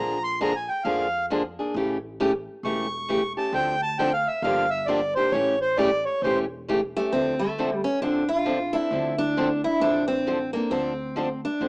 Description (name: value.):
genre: acoustic string swing (jazz manouche).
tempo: 134 BPM.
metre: 4/4.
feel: swing 62% on 8ths.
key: D minor.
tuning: A4 = 439 Hz.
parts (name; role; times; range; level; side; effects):
accordion; second line; 0.0-6.4 s; C5 to C#6; -24 LUFS; right 1 dB; none.
picked steel-string acoustic guitar; accompaniment; 0.0-11.7 s; C#3 to A4; -26 LUFS; equal; none.
upright bass; bass; 0.0-11.7 s; E1 to F2; -38 LUFS; equal; none.
picked steel-string acoustic guitar; melody; 7.0-11.7 s; A3 to F4; -23 LUFS; equal; plate reverb.
room: moderate small room reverb, RT60 0.5 s.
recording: rough home demo mix, small speaker sound.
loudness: -22 LUFS.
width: side -29 dB against mid.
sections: 0.0-7.1 A section; 7.1-11.7 B section.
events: accordion solo 0.0-7.1.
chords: 0.0 Bb7; 1.7 A7; 3.5 Dm7; 4.4 Gm7; 5.3 A7; 7.1 Dm7.